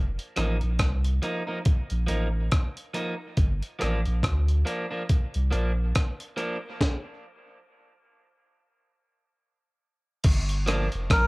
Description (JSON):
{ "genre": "dub reggae", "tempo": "70 BPM", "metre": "4/4", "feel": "swing 59% on 16ths", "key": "G minor", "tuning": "A4 = 440 Hz", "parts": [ { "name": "warm sub bass", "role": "bass", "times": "0.0-11.3 s", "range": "F1 to D2", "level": "-25 LUFS", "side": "equal", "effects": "none" }, { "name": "breakbeat sampler-style drum kit", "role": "drums", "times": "0.2-11.3 s", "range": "crash cymbal, hi-hat, kick drum, rim click, snare drum", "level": "-24 LUFS", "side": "equal", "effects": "cassette tape" }, { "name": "electric guitar at the edge of break-up", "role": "accompaniment", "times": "0.4-10.9 s", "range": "F3 to Eb4", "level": "-32 LUFS", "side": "right 1 dB", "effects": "spring reverb, cassette tape, dub echo" }, { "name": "melodica", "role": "melody", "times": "11.1-11.3 s", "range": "Bb4", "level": "-22 LUFS", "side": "equal", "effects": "none" } ], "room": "little or no reverb", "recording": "home recording on cassette", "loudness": "-24 LUFS", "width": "side -26 dB against mid", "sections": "0.0-10.2 A section; 10.2-11.3 B section", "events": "break 0.0-10.2; stop 6.8-10.2", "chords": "0.0 F7sus4; 3.4 Gm7 (rootless); 6.8 N.C.; 10.2 Gm7", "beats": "0.80 1.66 2.51 | 3.37 4.23 5.09 5.95 | 6.81 7.67 8.53 9.38 | 10.24 11.10" }